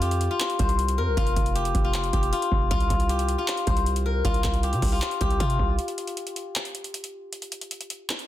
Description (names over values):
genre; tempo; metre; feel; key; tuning
hip hop, trap; 156 BPM; 4/4; half-time; unclear; A4 = 440 Hz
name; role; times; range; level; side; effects
steel-string zither; melody; 0.0-7.9 s; F4 to C5; -27 LUFS; left 3 dB; low-pass filter
hard-hitting 808-style bass; bass; 0.0-5.8 s; F1 to C3; -26 LUFS; equal; none
booming analog drum machine; drums; 0.0-8.3 s; handclaps, hi-hat, kick drum; -26 LUFS; equal; overdrive
room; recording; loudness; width
digital ambience; dense, heavily limited modern master; -22 LUFS; side -13 dB against mid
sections
0.0-5.8 A section; 5.8-8.3 B section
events
break 5.8-8.3; filter sweep on guzheng 5.8-8.3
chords
0.0 F5; 2.7 Csus4; 5.8 N.C.